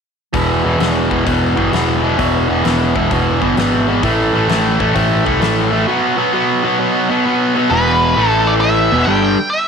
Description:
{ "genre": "blues rock power trio and southern rock", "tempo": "130 BPM", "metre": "4/4", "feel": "swing 66% on 8ths", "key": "E minor", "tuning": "A4 = 440 Hz", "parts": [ { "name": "distorted electric guitar", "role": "riff", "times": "0.3-9.4 s", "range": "E2 to B3", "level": "-14 LUFS", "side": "equal", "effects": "distortion" }, { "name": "growling picked electric bass", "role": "bass", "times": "0.3-9.4 s", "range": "E1 to C2", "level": "-20 LUFS", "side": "equal", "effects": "overdrive" }, { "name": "huge arena drum kit", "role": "drums", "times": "0.3-5.6 s", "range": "hi-hat, kick drum, snare drum", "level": "-22 LUFS", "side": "left 4 dB", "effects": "none" }, { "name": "octave-fuzz lead guitar", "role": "melody", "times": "7.7-9.7 s", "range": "B4 to G5", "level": "-15 LUFS", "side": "equal", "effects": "distortion" } ], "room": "moderate echo chamber reverb, RT60 1.7 s, small room reverb", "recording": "1960s-style stereo", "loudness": "-12 LUFS", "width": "side -6 dB against mid", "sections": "0.3-7.7 A section; 7.7-9.7 B section", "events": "none", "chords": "0.3 E5; 4.0 A5; 5.9 B5; 7.7 E5; 8.2 A5; 8.8 Em", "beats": "| 0.33 0.79 1.26 1.72 | 2.18 2.65 3.11 3.57 | 4.03 4.49 4.95 5.41 | 5.87 6.33 6.79 7.25 | 7.71 8.16 8.62 9.08 | 9.53" }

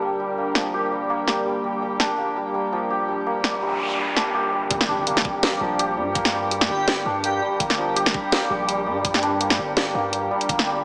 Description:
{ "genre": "half-time drum and bass", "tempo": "166 BPM", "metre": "4/4", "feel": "swing 54% on 16ths, half-time", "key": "G minor", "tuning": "A4 = 439 Hz", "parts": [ { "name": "deep dark ambient pad", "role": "sustained chords", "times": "0.0-10.8 s", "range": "G3 to G5", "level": "-33 LUFS", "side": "equal", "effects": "chorus, built-in reverb, sidechain pumping" }, { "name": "santur", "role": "arpeggios", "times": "0.0-10.8 s", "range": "F3 to G4", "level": "-26 LUFS", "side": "equal", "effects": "low-pass filter, dub echo" }, { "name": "metallic inharmonic drone", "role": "texture", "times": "0.0-10.8 s", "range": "G3 to G4", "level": "-36 LUFS", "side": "equal", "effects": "chorus, built-in reverb" }, { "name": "drum and bass drum kit", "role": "drums", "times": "0.6-10.7 s", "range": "hi-hat, snare drum", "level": "-25 LUFS", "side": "equal", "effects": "none" }, { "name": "noise sweep and impact", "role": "sound effects", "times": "3.4-6.2 s", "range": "none", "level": "-32 LUFS", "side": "equal", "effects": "none" }, { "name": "long sustained 808-style bass", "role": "bass", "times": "4.7-10.8 s", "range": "G1 to G2", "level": "-37 LUFS", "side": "equal", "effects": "tube saturation" }, { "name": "electronic kick drum", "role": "drums", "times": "4.7-10.6 s", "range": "none", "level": "-31 LUFS", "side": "equal", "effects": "none" }, { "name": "airy dreamy lead", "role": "melody", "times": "6.7-7.4 s", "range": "G4", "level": "-32 LUFS", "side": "equal", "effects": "chorus, dub echo" } ], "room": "moderate lush hall reverb, RT60 2.1 s", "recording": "small speaker sound", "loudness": "-23 LUFS", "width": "mono", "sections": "0.0-4.7 A section; 4.7-10.8 B section", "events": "noise sweep 3.4-4.7; drop 4.7-10.8; impact 4.7-6.2", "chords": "0.0 Gm", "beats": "0.01 | 0.37 0.73 1.09 1.46 | 1.82 2.18 2.54 2.90 | 3.26 3.62 3.99 4.35 | 4.71 5.07 5.43 5.79 | 6.16 6.52 6.88 7.24 | 7.60 7.96 8.32 8.69 | 9.05 9.41 9.77 10.13 | 10.49" }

